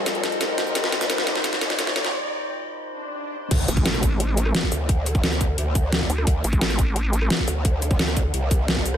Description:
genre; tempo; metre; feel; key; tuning
dark technical drum and bass; 174 BPM; 4/4; straight; D phrygian; A4 = 440 Hz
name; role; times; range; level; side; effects
metallic inharmonic drone; sustained chords; 0.0-3.5 s; G3 to C5; -32 LUFS; left 2 dB; chorus, built-in reverb, phaser, sidechain pumping
growl bass; bass; 0.0-9.0 s; G1 to D2; -25 LUFS; equal; chorus, tube saturation, high-pass filter
riser, swell and impact; sound effects; 0.0-4.9 s; none; -30 LUFS; equal; none
deep dark ambient pad; texture; 0.0-2.1 s; F4 to G5; -32 LUFS; left 4 dB; chorus, built-in reverb, sidechain pumping
dubstep drum kit; drums; 0.1-9.0 s; crash cymbal, hi-hat, rim click, shaker, snare drum; -24 LUFS; equal; overdrive, high-pass filter on snare, high-pass filter on hats, high-pass filter on perc, high-pass filter on cymbals, high-pass filter on room
electronic kick drum; drums; 3.5-8.8 s; none; -22 LUFS; equal; none
vowel-sweep wobble bass; bass; 3.7-7.3 s; A1 to D2; -22 LUFS; equal; chorus
room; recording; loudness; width
light reverb; high-pass filter; -20 LUFS; side -9 dB against mid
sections
0.0-3.5 A section; 3.5-9.0 B section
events
build-up 0.0-3.5; drum fill 0.0-2.1; riser 0.0-2.1; filter sweep 0.0-3.5; break 2.1-3.5; swell 2.8-3.5; drop 3.5-9.0; impact 3.5-4.9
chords
0.0 Cm; 3.5 D5

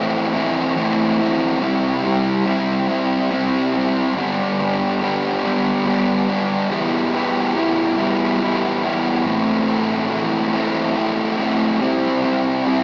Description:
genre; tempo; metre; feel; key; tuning
rock; 47 BPM (dotted quarters); 6/8; straight; unclear; A4 = 440 Hz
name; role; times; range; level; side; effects
fuzz guitar; solo; 0.0-12.8 s; G2 to E4; -19 LUFS; equal; distortion
room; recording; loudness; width
wet recital hall reverb, RT60 1.5 s; recorded in a church or concert hall, small speaker sound; -19 LUFS; mono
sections
0.0-12.8 A section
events
none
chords
0.0 Am; 1.6 C; 4.2 G; 6.7 Em; 9.3 Am; 11.8 C

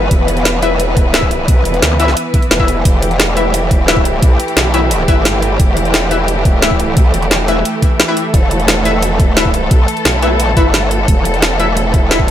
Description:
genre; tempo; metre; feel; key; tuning
dark technical drum and bass; 175 BPM; 4/4; straight; E minor; A4 = 440 Hz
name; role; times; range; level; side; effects
rich studio string section; sustained chords; 0.0-12.3 s; E3 to B4; -18 LUFS; equal; sidechain pumping
growl bass; bass; 0.0-12.3 s; E1 to D2; -15 LUFS; equal; chorus, tube saturation
drum and bass drum kit; drums; 0.1-12.3 s; hi-hat, snare drum; -15 LUFS; equal; overdrive, studio reverb
electronic kick drum; drums; 0.1-12.3 s; none; -12 LUFS; equal; overdrive, studio reverb
orchestra-hit-like synth stab; stabs; 0.6-12.2 s; E4 to E5; -19 LUFS; left 3 dB; built-in reverb, dub echo
room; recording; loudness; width
light reverb, digital ambience; none; -10 LUFS; side -11 dB against mid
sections
0.0-12.3 A section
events
none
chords
0.0 Em

